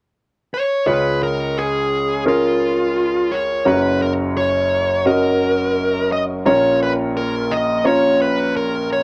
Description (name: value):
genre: pop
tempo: 86 BPM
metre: 4/4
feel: straight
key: Db mixolydian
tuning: A4 = 440 Hz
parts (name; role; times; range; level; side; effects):
- dark smooth lead guitar; melody; 0.5-9.0 s; F4 to Eb5; -21 LUFS; equal; overdrive
- bright upright piano; accompaniment; 0.9-9.0 s; Gb1 to Bb5; -20 LUFS; equal; none
room: moderate booth ambience, RT60 0.2 s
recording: dry, close 1970s-style studio recording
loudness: -18 LUFS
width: mono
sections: 0.9-9.0 A section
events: none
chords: 0.0 N.C.; 0.9 Db; 3.7 Gb; 6.5 Bbm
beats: 0.17 | 0.87 1.57 2.27 2.97 | 3.67 4.37 5.06 5.76 | 6.46 7.16 7.86 8.56